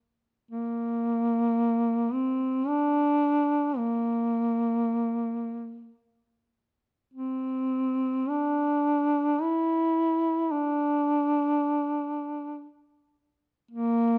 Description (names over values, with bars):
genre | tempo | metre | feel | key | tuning
caucasian folk, Caucasian lament | free time | none | none | unclear | A4 = 439 Hz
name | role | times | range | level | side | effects
dark duduk | solo | 0.5-14.2 s | Bb3 to E4 | -27 LUFS | equal | none
room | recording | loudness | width
light reverb | close, detailed microphones | -27 LUFS | mono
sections
0.0-14.2 A section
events
none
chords
none